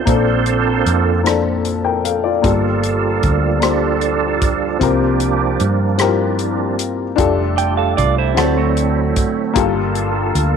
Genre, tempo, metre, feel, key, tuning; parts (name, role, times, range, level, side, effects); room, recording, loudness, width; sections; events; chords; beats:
slow gospel; 51 BPM (dotted quarters); 6/8; straight; A4 = 440 Hz
warm upright piano; accompaniment; 0.0-10.6 s; G2 to G5; -19 LUFS; left 10 dB
bright tonewheel organ; sustained chords; 0.0-10.6 s; F3 to C5; -20 LUFS; right 12 dB; fast rotary speaker, chorus vibrato
mellow French horn section; sustained chords; 0.0-10.6 s; F3 to A4; -26 LUFS; equal
hollow-body short-scale fingered electric bass; bass; 0.0-10.6 s; F1 to G2; -20 LUFS; right 1 dB
warm soul drum kit; drums; 0.1-10.5 s; hi-hat, kick drum, rim click; -21 LUFS; equal
clean electric guitar; second line; 7.6-9.5 s; A3 to G5; -19 LUFS; right 12 dB
moderate spring reverb, RT60 2.1 s; 1960s-style stereo with parts hard left and right; -14 LUFS; side -6 dB against mid
0.0-10.6 A section
tonewheel organ solo 0.0-10.6
0.1 Bbmaj9; 2.4 Gm9; 4.8 C7sus4; 7.2 F69; 8.4 D7; 9.6 Gm9
| 0.07 1.25 | 2.44 3.63 | 4.81 6.00 | 7.19 8.37 | 9.56